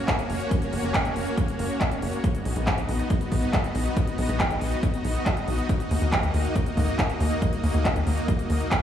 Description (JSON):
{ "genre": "uplifting trance", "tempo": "139 BPM", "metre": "4/4", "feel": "straight", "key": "Eb minor", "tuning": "A4 = 441 Hz", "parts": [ { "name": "supersaw pad", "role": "sustained chords", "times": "0.0-8.8 s", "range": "Bb3 to D#5", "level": "-29 LUFS", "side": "equal", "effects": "sidechain pumping" }, { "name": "big-room dance drum kit", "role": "drums", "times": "0.1-8.8 s", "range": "handclaps, hi-hat", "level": "-30 LUFS", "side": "equal", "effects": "overdrive" }, { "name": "electronic kick drum", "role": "drums", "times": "0.1-8.8 s", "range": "none", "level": "-26 LUFS", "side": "equal", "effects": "none" }, { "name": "tight sequencer bass", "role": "bass", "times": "0.3-8.6 s", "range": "Gb1 to Eb2", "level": "-26 LUFS", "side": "left 1 dB", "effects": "sidechain pumping" } ], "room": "light reverb", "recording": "played on a big sound system in a bare room, stone room reverb, small room ambience", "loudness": "-22 LUFS", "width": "side -10 dB against mid", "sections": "0.0-8.8 A section", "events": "none", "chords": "0.0 Gb; 2.2 B; 5.7 Ebm" }